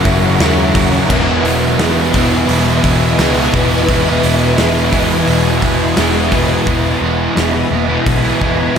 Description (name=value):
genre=rock, shoegaze and dream pop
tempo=86 BPM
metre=4/4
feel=straight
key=E lydian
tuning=A4 = 440 Hz
part: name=phased string machine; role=sustained chords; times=0.0-8.8 s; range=E4 to G#5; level=-18 LUFS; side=equal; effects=ensemble chorus, phaser
part: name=crunchy overdriven guitar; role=riff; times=0.0-8.8 s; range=F#2 to E4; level=-17 LUFS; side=right 7 dB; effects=reverse reverb
part: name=distorted electric guitar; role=riff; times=0.0-6.7 s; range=E2 to F#3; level=-22 LUFS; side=equal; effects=overdrive
part: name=thick fuzz guitar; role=riff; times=0.0-8.8 s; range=E2 to F#3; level=-17 LUFS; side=left 6 dB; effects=distortion, analog chorus
part: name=vintage muted picked electric bass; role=bass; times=0.1-8.8 s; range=E1 to D#2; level=-19 LUFS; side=equal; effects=none
part: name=gated 80s drum kit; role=drums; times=0.1-8.8 s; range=crash cymbal, hi-hat, kick drum, snare drum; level=-19 LUFS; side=equal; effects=none
room=wet huge ambient reverb, RT60 7.8 s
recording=dreamy mix soaked in reverb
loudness=-11 LUFS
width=side -7 dB against mid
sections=0.0-6.7 A section; 6.7-8.8 B section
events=none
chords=0.0 F#7; 1.1 Emaj7